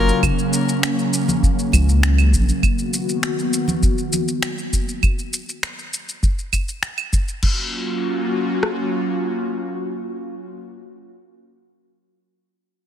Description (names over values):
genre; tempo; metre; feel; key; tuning
sunset chillout; 100 BPM; 4/4; straight; F# major; A4 = 441 Hz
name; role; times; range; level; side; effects
airy breathy pad; sustained chords; 0.0-10.6 s; C#3 to F#4; -22 LUFS; equal; chorus
round analog bass; bass; 0.0-2.5 s; F#1 to C#2; -15 LUFS; equal; none
deep house drum kit; drums; 0.1-7.5 s; claves, crash cymbal, finger snaps, shaker; -25 LUFS; right 1 dB; soft clipping on snare
soft vintage rhythm box; drums; 0.2-8.8 s; kick drum, rim click; -20 LUFS; equal; none
congas; percussion; 1.3-4.2 s; none; -26 LUFS; right 2 dB; none
room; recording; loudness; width
light reverb; dense, heavily limited modern master; -18 LUFS; side -10 dB against mid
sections
0.0-7.4 A section; 7.4-9.8 B section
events
filter sweep on analog synth pad 0.0-5.0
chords
0.0 F#maj7; 2.6 Bmaj7; 5.0 N.C.; 7.4 F#maj7